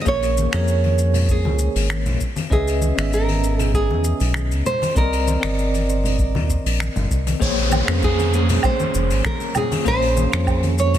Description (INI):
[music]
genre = sunset chillout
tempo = 98 BPM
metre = 4/4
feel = swing 53% on 16ths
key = Bb dorian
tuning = A4 = 439 Hz
[part]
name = nylon-string guitar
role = melody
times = 0.0-11.0 s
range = Ab4 to Eb5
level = -24 LUFS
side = right 2 dB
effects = tape echo
[part]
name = bell-like tine electric piano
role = accompaniment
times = 0.0-11.0 s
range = Bb3 to Fb5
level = -25 LUFS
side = moving between left 8 dB and right 6 dB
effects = fast stereo tremolo, auto-pan, digital delay
[part]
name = round analog bass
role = bass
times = 0.1-11.0 s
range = F1 to F2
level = -20 LUFS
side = equal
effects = none
[part]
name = electronic kick drum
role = drums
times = 0.1-10.6 s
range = none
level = -22 LUFS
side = equal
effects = none
[part]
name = jazz brush drum kit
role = drums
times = 0.1-11.0 s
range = finger snaps, hi-hat, shaker, woodblock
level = -28 LUFS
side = equal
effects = soft clipping on snare
[part]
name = congas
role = percussion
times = 0.4-11.0 s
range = none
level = -29 LUFS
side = left 3 dB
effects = none
[part]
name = downlifter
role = sound effects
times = 7.4-11.0 s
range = none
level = -26 LUFS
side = equal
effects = none
[sound]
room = light reverb, small room reverb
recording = dense, heavily limited modern master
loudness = -17 LUFS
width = side -11 dB against mid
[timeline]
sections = 0.0-7.4 A section; 7.4-11.0 B section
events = none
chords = 0.0 Bbm9; 2.2 Dbm9; 4.7 Cm9; 7.4 Bbm9